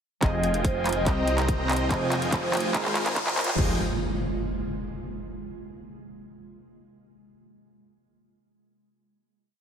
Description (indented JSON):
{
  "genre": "future bass",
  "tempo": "143 BPM",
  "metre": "4/4",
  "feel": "half-time",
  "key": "F minor",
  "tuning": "A4 = 440 Hz",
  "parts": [
    { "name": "vibraphone with soft mallets", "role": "melody", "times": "0.2-2.8 s", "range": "C5 to Eb5", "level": "-32 LUFS", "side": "right 1 dB", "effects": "sidechain pumping, digital delay" },
    { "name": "glassy digital keys", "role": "accompaniment", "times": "0.2-3.8 s", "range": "C3 to Eb5", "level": "-35 LUFS", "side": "right 3 dB", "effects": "chorus, sidechain pumping, tape echo" },
    { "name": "ethereal airy pad", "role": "sustained chords", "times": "0.9-3.8 s", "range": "Ab3 to F4", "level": "-37 LUFS", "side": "right 2 dB", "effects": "ensemble chorus, built-in reverb, sidechain pumping" },
    { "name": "supersaw chords", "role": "riff", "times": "0.2-3.7 s", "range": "F3 to Bb5", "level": "-30 LUFS", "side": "equal", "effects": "sidechain pumping, low-pass filter" },
    { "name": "wide detuned saw bass", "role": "bass", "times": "0.2-3.8 s", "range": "F1 to C2", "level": "-30 LUFS", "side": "equal", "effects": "chorus, sidechain pumping" },
    { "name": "electronic kick drum", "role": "drums", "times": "0.2-3.7 s", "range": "none", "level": "-26 LUFS", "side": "equal", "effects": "none" },
    { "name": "trap drum kit", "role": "drums", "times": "0.2-3.7 s", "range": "crash cymbal, handclaps, hi-hat", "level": "-29 LUFS", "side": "equal", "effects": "none" },
    { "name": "riser and impact", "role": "sound effects", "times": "1.3-5.3 s", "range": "none", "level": "-33 LUFS", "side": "equal", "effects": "none" }
  ],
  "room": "moderate lush hall reverb, RT60 1.7 s",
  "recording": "heavily compressed radio sound, high-pass filter",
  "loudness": "-23 LUFS",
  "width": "side -8 dB against mid",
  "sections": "0.2-3.6 build; 3.6-5.3 final chord",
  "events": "build-up 0.2-3.6; drum fill 0.2-3.6; filter sweep 0.2-3.6; riser 1.3-3.6",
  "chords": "0.2 Fm9; 1.1 Cm7; 1.9 Fm9; 2.7 Ab69; 3.6 Fm9",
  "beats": "| 0.23 0.65 1.07 1.49 | 1.91 2.33 2.75 3.17 | 3.58 4.00 4.42 4.84"
}